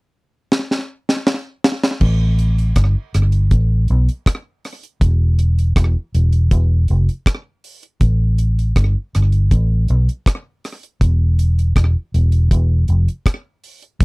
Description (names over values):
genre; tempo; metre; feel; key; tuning
roots reggae; 80 BPM; 4/4; straight; unclear; A4 = 439 Hz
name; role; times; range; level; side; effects
deep reggae drum kit; drums; 0.5-14.0 s; crash cymbal, hi-hat, kick drum, rim click, snare drum; -16 LUFS; equal; slapback echo
vintage muted fingered electric bass; bass; 2.0-14.0 s; E1 to B1; -14 LUFS; equal; none
room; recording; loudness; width
little or no reverb; dry, close 1970s-style studio recording; -14 LUFS; side -31 dB against mid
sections
0.0-2.0 A section; 2.0-8.0 B section; 8.0-14.0 C section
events
drum fill 0.5-2.0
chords
none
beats
0.51 1.26 | 2.01 2.76 3.51 4.26 | 5.01 5.76 6.51 7.26 | 8.01 8.76 9.51 10.26 | 11.01 11.76 12.51 13.26 | 14.01